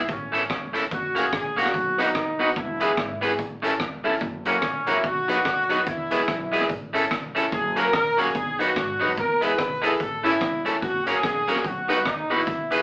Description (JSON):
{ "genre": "ska", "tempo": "145 BPM", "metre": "4/4", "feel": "swing 60% on 8ths", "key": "B major", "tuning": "A4 = 440 Hz", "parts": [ { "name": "clear horn section", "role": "melody", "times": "0.0-12.8 s", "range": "C#4 to B4", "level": "-24 LUFS", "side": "equal", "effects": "none" }, { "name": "upright bass", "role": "bass", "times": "0.0-12.8 s", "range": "E1 to E2", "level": "-37 LUFS", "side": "equal", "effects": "none" }, { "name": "raw garage drum kit", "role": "drums", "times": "0.1-12.8 s", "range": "hi-hat, kick drum, rim click", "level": "-30 LUFS", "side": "equal", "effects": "none" }, { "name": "electric guitar at the edge of break-up", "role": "accompaniment", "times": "0.3-12.8 s", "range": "F#3 to B4", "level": "-24 LUFS", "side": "equal", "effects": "analog delay" }, { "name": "bright upright piano", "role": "stabs", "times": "1.2-12.8 s", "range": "A#3 to B4", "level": "-28 LUFS", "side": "equal", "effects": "none" } ], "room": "wet studio ambience, RT60 0.5 s", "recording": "band playing live in one room, vinyl crackle, AM radio sound", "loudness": "-21 LUFS", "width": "side -23 dB against mid", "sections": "0.0-12.8 A section", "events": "none", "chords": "0.1 A; 0.9 F#; 1.7 B; 2.6 E; 3.4 A; 4.2 F#; 5.0 B; 5.9 E; 6.7 A; 7.5 F#; 8.4 B; 9.2 E; 10.0 A; 10.8 F#; 11.6 B", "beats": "0.08 0.49 | 0.91 1.32 1.73 2.15 | 2.56 2.98 3.39 3.80 | 4.22 4.63 5.04 5.46 | 5.87 6.29 6.70 7.11 | 7.53 7.94 8.35 8.76 | 9.18 9.59 10.00 10.41 | 10.82 11.23 11.65 12.06 | 12.47" }